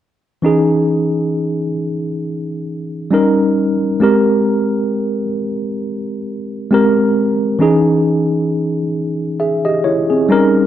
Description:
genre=hip hop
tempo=67 BPM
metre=4/4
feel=swing 55% on 16ths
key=unclear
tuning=A4 = 440 Hz
part: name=tine electric piano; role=accompaniment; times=0.4-10.7 s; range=Fb3 to Fb5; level=-14 LUFS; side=equal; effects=medium stereo tremolo, low-pass filter
room=moderate spring reverb, RT60 1.7 s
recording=none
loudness=-13 LUFS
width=side -11 dB against mid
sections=0.4-10.7 A section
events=none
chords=0.4 Dbmadd9; 3.1 Eb7; 4.0 Abmaj9; 7.6 Dbmadd9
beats=| 0.43 1.33 2.23 3.12 | 4.02 4.91 5.81 6.70 | 7.60 8.49 9.39 10.29

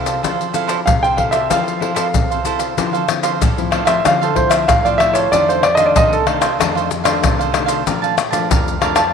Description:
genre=samba and choro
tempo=94 BPM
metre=4/4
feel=straight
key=D minor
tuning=A4 = 440 Hz
part: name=cavaquinho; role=accompaniment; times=0.0-9.1 s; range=D4 to A5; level=-21 LUFS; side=right 13 dB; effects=none
part: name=nylon-string guitar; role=accompaniment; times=0.0-9.1 s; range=F2 to A4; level=-23 LUFS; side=left 7 dB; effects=none
part: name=maracas, pandeiro, surdo and tamborim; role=percussion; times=0.1-9.1 s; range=none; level=-18 LUFS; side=left 4 dB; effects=none
part: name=warm concert grand piano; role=melody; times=0.9-9.1 s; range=A4 to A5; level=-17 LUFS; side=right 1 dB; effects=tape echo
room=moderate plate reverb, RT60 2.5 s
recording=1960s-style stereo with parts hard left and right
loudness=-13 LUFS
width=side -6 dB against mid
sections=0.0-2.8 A section; 2.8-9.1 B section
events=grand piano solo 2.8-9.1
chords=0.0 Fmaj7; 2.8 Dm9; 5.3 F6; 7.9 Bbmaj7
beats=| 0.24 0.88 1.51 2.15 | 2.79 3.42 4.06 4.69 | 5.33 5.96 6.60 7.24 | 7.87 8.51

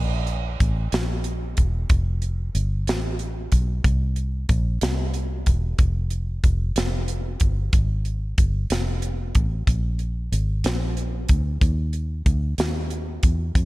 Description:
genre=slow gospel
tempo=62 BPM (dotted quarters)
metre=6/8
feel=straight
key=unclear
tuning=A4 = 440 Hz
part: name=fingered electric bass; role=bass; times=0.0-13.7 s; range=E1 to F2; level=-23 LUFS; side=equal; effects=none
part: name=tight funk drum kit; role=drums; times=0.3-13.7 s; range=hi-hat, kick drum, snare drum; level=-22 LUFS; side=equal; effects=none
room=light reverb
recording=none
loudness=-21 LUFS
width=side -19 dB against mid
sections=0.0-13.7 A section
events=none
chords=none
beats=0.93 | 1.90 2.87 | 3.85 4.82 | 5.79 6.76 | 7.73 8.70 | 9.67 10.64 | 11.62 12.59 | 13.56

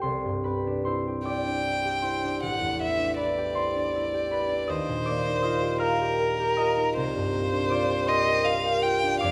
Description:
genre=classical, impressionist duo for violin and harp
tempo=53 BPM (dotted quarters)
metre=6/8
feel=rubato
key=unclear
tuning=A4 = 440 Hz
part: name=concert harp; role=accompaniment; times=0.0-9.3 s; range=A1 to F6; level=-29 LUFS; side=equal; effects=none
part: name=rich violin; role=melody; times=1.3-9.3 s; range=Bb4 to G5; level=-29 LUFS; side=equal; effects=none
room=wet recital hall reverb, RT60 1.7 s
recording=none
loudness=-26 LUFS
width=mono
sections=0.0-9.3 A section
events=none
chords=0.0 Cadd9; 2.4 Am11; 4.7 Ebadd9; 7.0 Cm11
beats=| 0.04 1.27 | 2.44 3.58 | 4.71 5.83 | 6.97 8.09 | 9.22

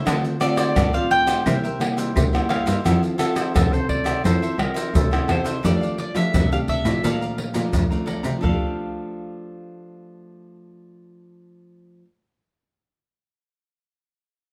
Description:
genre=samba and choro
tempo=86 BPM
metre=4/4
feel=straight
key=F major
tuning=A4 = 440 Hz
part: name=mandolin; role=melody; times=0.0-12.0 s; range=C5 to G5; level=-27 LUFS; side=equal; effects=plate reverb
part: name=cavaquinho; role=accompaniment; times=0.0-12.1 s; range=D4 to Bb5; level=-35 LUFS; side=equal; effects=none
part: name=nylon-string guitar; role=accompaniment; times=0.0-12.2 s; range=F2 to A4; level=-29 LUFS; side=equal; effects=none
part: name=rich cello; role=bass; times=0.1-8.5 s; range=C2 to F3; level=-25 LUFS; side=equal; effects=none
part: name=egg shaker, surdo, pandeiro and tamborim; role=percussion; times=0.1-8.6 s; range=none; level=-26 LUFS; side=equal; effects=none
part: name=bright clarinet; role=second line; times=3.5-5.6 s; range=A4 to D5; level=-31 LUFS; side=equal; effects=none
room=moderate studio reverb, RT60 0.7 s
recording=none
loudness=-21 LUFS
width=mono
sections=0.0-5.6 A section; 5.6-8.4 B section; 8.4-11.2 C section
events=none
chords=0.1 Dm7; 1.5 C7; 2.9 Fmaj7; 5.6 F69; 7.0 Bbmaj7; 8.4 F69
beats=| 0.06 0.76 1.46 2.15 | 2.85 3.55 4.25 4.94 | 5.64 6.34 7.03 7.73 | 8.43 9.13 9.83 10.53

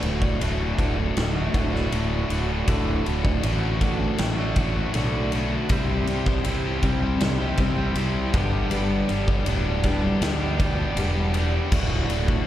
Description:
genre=quiet-loud alternative rock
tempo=80 BPM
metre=4/4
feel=straight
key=D mixolydian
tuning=A4 = 440 Hz
part: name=fingerpicked steel-string acoustic guitar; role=arpeggios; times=0.0-11.7 s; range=D2 to C4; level=-30 LUFS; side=left 1 dB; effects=none
part: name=distorted electric guitar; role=riff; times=0.0-12.5 s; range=D2 to C5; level=-29 LUFS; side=left 8 dB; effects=distortion
part: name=overdriven electric guitar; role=riff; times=0.0-12.5 s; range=D2 to C5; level=-30 LUFS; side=right 9 dB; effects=none
part: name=fuzz fingered electric bass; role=bass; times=0.0-12.4 s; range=D1 to D2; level=-26 LUFS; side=equal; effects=overdrive
part: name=big rock drum kit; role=drums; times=0.0-12.5 s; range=crash cymbal, kick drum, ride cymbal, snare drum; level=-26 LUFS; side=equal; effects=none
room=small room ambience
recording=live gig heard through the venue's PA, recital hall reverb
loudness=-21 LUFS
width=side -12 dB against mid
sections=0.0-12.5 A section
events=none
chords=0.0 D; 5.7 C; 8.3 G; 11.7 D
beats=0.41 1.16 1.92 | 2.68 3.44 4.20 4.95 | 5.71 6.46 7.22 7.97 | 8.72 9.47 10.22 10.97 | 11.73

